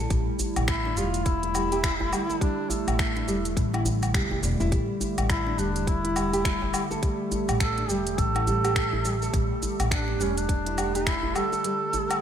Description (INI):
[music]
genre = organic downtempo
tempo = 104 BPM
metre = 4/4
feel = swing 60% on 16ths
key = unclear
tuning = A4 = 445 Hz
[part]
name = warbly tape-like pad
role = sustained chords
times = 0.0-12.2 s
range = D3 to G4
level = -31 LUFS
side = right 2 dB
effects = chorus, built-in reverb, sidechain pumping
[part]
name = nylon-string guitar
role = arpeggios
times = 0.0-12.2 s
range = G3 to D5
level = -32 LUFS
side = right 1 dB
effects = ping-pong delay
[part]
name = upright bass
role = bass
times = 0.0-11.3 s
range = E1 to A1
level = -29 LUFS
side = equal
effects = tube saturation, sidechain pumping
[part]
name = electronic kick drum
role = drums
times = 0.1-11.2 s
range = none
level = -26 LUFS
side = equal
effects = none
[part]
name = organic electronic drum kit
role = drums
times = 0.1-12.2 s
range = finger snaps, hi-hat, shaker, woodblock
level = -31 LUFS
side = left 1 dB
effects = gated reverb
[part]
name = djembe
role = percussion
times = 0.4-12.2 s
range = none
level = -36 LUFS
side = equal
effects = none
[part]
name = warm duduk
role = melody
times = 0.7-12.2 s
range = A3 to A4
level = -30 LUFS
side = equal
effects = digital delay
[sound]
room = moderate lush hall reverb, RT60 1.8 s, small room ambience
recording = bright 1980s-style digital production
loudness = -23 LUFS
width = side -9 dB against mid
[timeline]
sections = 0.0-12.2 A section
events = none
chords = 0.0 A7sus4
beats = | 0.10 0.68 1.26 1.84 | 2.41 2.99 3.57 4.14 | 4.72 5.30 5.87 6.45 | 7.03 7.61 8.18 8.76 | 9.34 9.91 10.49 11.07 | 11.64